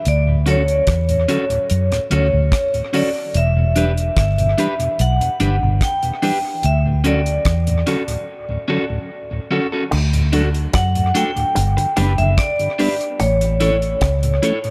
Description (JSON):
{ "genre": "roots reggae", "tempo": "73 BPM", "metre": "4/4", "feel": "straight", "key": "D major", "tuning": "A4 = 441 Hz", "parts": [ { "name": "vibraphone with hard mallets", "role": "melody", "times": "0.0-14.7 s", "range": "C#5 to G5", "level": "-23 LUFS", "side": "equal", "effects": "dub echo" }, { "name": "vintage muted fingered electric bass", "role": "bass", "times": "0.1-14.4 s", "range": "E1 to F#2", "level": "-19 LUFS", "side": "equal", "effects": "none" }, { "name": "deep reggae drum kit", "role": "drums", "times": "0.1-14.7 s", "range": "crash cymbal, hi-hat, kick drum, rim click", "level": "-26 LUFS", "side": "equal", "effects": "dub echo" }, { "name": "mellow tonewheel organ", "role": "accompaniment", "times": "0.3-14.7 s", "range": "D2 to D4", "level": "-27 LUFS", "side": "equal", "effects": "chorus vibrato, slow rotary speaker, dub echo" }, { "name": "electric guitar at the edge of break-up", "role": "accompaniment", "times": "0.5-14.6 s", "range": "C#4 to C#5", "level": "-27 LUFS", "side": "equal", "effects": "spring reverb, dub echo" }, { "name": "electric guitar with an envelope filter", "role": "riff", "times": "9.9-14.3 s", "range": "F#2 to F#3", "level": "-29 LUFS", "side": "equal", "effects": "tremolo" } ], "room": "small room ambience", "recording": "none", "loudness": "-18 LUFS", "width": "mono", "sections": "0.0-9.9 A section; 9.9-14.7 B section", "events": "break 8.3-9.9", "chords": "0.1 Dmaj7; 3.3 Em7; 6.6 Dmaj7; 9.9 D; 11.6 G; 13.2 A" }